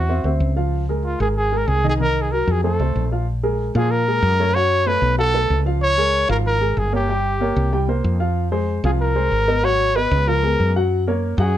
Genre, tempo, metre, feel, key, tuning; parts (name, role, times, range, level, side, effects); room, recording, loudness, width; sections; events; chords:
Afro-Cuban jazz; 188 BPM; 4/4; straight; Db major; A4 = 440 Hz
mellow trumpet; melody; 0.0-11.6 s; F4 to Db5; -20 LUFS; equal
warm baby grand piano; accompaniment; 0.0-11.6 s; Eb3 to G5; -23 LUFS; equal
woody fretless electric bass; bass; 0.0-11.6 s; G1 to Bb2; -20 LUFS; equal
light reverb; -17 LUFS; side -12 dB against mid
0.0-3.3 A section; 3.3-11.6 B section
0.0 Ab7b13 (rootless); 0.7 Db6; 2.0 Cm7b5; 2.6 F; 3.3 Bb7(no3); 4.5 Gbm; 5.2 Cbsus2; 5.8 Db6; 7.1 Gdim; 7.7 C5; 8.4 Fm; 9.6 Abm7; 10.3 Db6; 10.9 Gbadd9